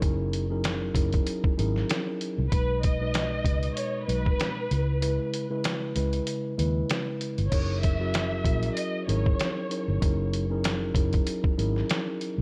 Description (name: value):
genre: hip hop, boom-bap hip-hop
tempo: 96 BPM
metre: 4/4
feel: swing 55% on 16ths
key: unclear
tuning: A4 = 437 Hz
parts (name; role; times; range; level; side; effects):
- mellow tine electric piano; accompaniment; 0.0-12.4 s; B2 to B4; -33 LUFS; equal; cassette tape, high-pass filter, low-pass filter
- fingered electric bass; bass; 0.0-12.4 s; F#1 to D#2; -30 LUFS; equal; none
- trip hop sampler-style drum kit; drums; 0.0-12.4 s; crash cymbal, hi-hat, kick drum, snare drum; -30 LUFS; equal; none
- dark studio violin section; melody; 2.5-10.0 s; B4 to E5; -36 LUFS; equal; high-pass filter, low-pass filter, tape echo
room: digital ambience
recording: none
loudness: -27 LUFS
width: mono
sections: 0.0-7.5 A section; 7.5-12.4 A section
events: kick muted 5.0-7.5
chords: 0.0 F#13; 2.5 B6; 4.7 C#m7; 7.5 F#13